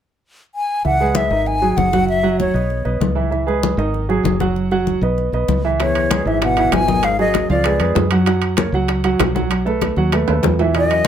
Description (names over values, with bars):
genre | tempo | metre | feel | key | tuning
Afro-Cuban jazz | 194 BPM | 4/4 | straight | C# minor | A4 = 438 Hz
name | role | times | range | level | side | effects
silver concert flute | melody | 0.5-3.0, 5.8-7.9, 10.8-11.1 s | C#5 to G#5 | -18 LUFS | left 2 dB | plate reverb
warm grand piano | accompaniment | 0.8-11.0 s | D#3 to F#5 | -19 LUFS | right 4 dB | none
fingered electric bass | bass | 0.8-11.1 s | F#1 to F#2 | -21 LUFS | equal | none
congas | percussion | 0.8-11.1 s | none | -23 LUFS | left 4 dB | none
breathy trombone | second line | 5.8-7.9, 10.8-11.1 s | E2 to B2 | -24 LUFS | left 7 dB | none
bongos | percussion | 5.8-10.9 s | none | -25 LUFS | left 9 dB | none
timbales | percussion | 5.8-11.1 s | none | -24 LUFS | right 6 dB | none
room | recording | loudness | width
moderate club reverb, RT60 0.6 s | none | -15 LUFS | side -9 dB against mid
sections
0.8-5.8 A section; 5.8-11.1 B section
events
drum fill 10.3-10.7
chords
0.0 N.C.; 0.8 C#m7; 1.5 G#5; 2.1 F#5; 2.7 Badd9; 3.3 C#m7; 3.9 G#5; 4.6 B/F#; 5.2 Badd9; 5.8 C#m9; 7.0 G#5; 7.7 C#7b9; 8.3 F#; 9.5 B7